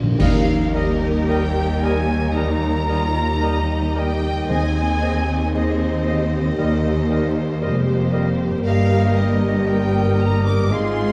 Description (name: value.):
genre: classical, slow romantic movement for symphony orchestra.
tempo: 53-59 BPM.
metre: 4/4.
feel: rubato.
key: Eb major.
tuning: A4 = 439 Hz.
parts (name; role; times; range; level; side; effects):
concert harp; arpeggios; 0.0-11.1 s; G2 to D5; -31 LUFS; equal; none.
clear symphonic double bass section; bass; 0.0-11.1 s; F1 to Eb2; -26 LUFS; equal; none.
rich symphonic cello section; bass; 0.0-11.1 s; Eb2 to Ab2; -25 LUFS; equal; none.
timpani; percussion; 0.0-8.1 s; Bb2 to Eb3; -28 LUFS; equal; none.
warm studio violin section; melody; 0.2-11.1 s; Ab4 to Eb5; -35 LUFS; equal; none.
bright oboe; second line; 0.2-11.1 s; Eb5 to F5; -36 LUFS; equal; none.
mellow clarinet; second line; 0.2-11.1 s; Ab4 to C5; -34 LUFS; equal; none.
silver concert flute; second line; 0.2-11.1 s; Eb5 to D6; -33 LUFS; equal; none.
warm studio violin section; second line; 0.2-11.1 s; Eb5 to D6; -32 LUFS; equal; none.
clear symphonic viola section; accompaniment; 0.2-11.1 s; G3 to Ab4; -30 LUFS; equal; none.
warm bassoon; accompaniment; 0.2-11.1 s; G3 to Ab3; -33 LUFS; equal; none.
mellow French horn section; sustained chords; 0.2-11.1 s; G3 to G4; -29 LUFS; equal; none.
clash cymbals and concert bass drum; percussion; 0.2-2.3 s; none; -27 LUFS; equal; none.
room: moderate concert hall reverb, RT60 1.6 s.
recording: dark, warm production, vinyl crackle.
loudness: -19 LUFS.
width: mono.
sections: 0.2-11.1 A section.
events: timpani fill 0.0; band accent 0.2-1.3.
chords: 0.2 Eb; 4.5 Ab/Eb; 6.6 Eb; 8.6 Eb/G.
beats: | 0.20 1.28 2.35 3.41 | 4.50 5.54 6.58 7.62 | 8.64 9.66 10.72.